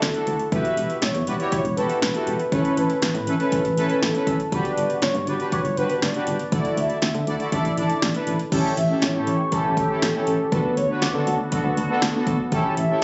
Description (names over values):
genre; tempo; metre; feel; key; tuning
synth-pop; 120 BPM; 4/4; straight; unclear; A4 = 438 Hz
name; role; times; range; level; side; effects
mellow horn-like synth lead; melody; 0.0-13.0 s; A4 to E5; -28 LUFS; equal; chorus, phaser
solid FM bass; bass; 0.0-12.9 s; E1 to D3; -28 LUFS; equal; none
deep house drum kit; drums; 0.0-12.9 s; crash cymbal, hi-hat, kick drum, snare drum; -29 LUFS; equal; overdrive
analog synth brass; accompaniment; 0.1-13.0 s; B3 to D5; -27 LUFS; equal; chorus
sweeping resonant pad; sustained chords; 8.5-13.0 s; D3 to G4; -31 LUFS; equal; chorus
room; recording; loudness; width
light reverb, digital ambience; recorded on a phone in the room, club reverb, compression, nothing above 7.9 kHz; -23 LUFS; mono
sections
0.0-8.5 A section; 8.5-13.0 B section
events
none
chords
0.0 Dadd9; 0.5 Emadd9; 2.5 Aadd9; 4.5 Gmaj7; 6.5 Dadd9; 7.5 Asus4; 8.5 A7; 10.5 D6; 12.5 A7